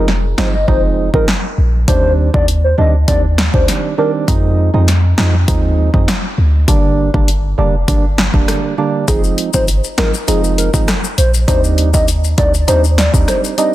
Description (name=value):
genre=dancehall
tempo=100 BPM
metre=4/4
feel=straight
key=F dorian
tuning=A4 = 440 Hz
part: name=hollow clarinet-like synth lead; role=melody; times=0.0-4.1, 9.1-13.7 s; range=Ab4 to Eb5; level=-18 LUFS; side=left 1 dB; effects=chorus, digital delay
part: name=percussive organ stab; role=accompaniment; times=0.0-13.7 s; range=D3 to Eb4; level=-18 LUFS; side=right 5 dB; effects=chorus
part: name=warm 808-style bass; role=bass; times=0.0-13.3 s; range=F1 to F2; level=-14 LUFS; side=equal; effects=none
part: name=deep house drum kit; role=drums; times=0.1-13.7 s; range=hi-hat, kick drum, rim click, snare drum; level=-16 LUFS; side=equal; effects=overdrive
part: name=maracas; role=percussion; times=9.1-13.7 s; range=none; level=-24 LUFS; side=left 10 dB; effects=none
room=light reverb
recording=dense, heavily limited modern master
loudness=-11 LUFS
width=side -15 dB against mid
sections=0.0-9.1 A section; 9.1-13.7 B section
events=none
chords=0.0 Fm7; 1.9 Cmadd9; 4.3 Fm7; 6.7 Gm; 9.1 Fm7; 11.5 Cmadd9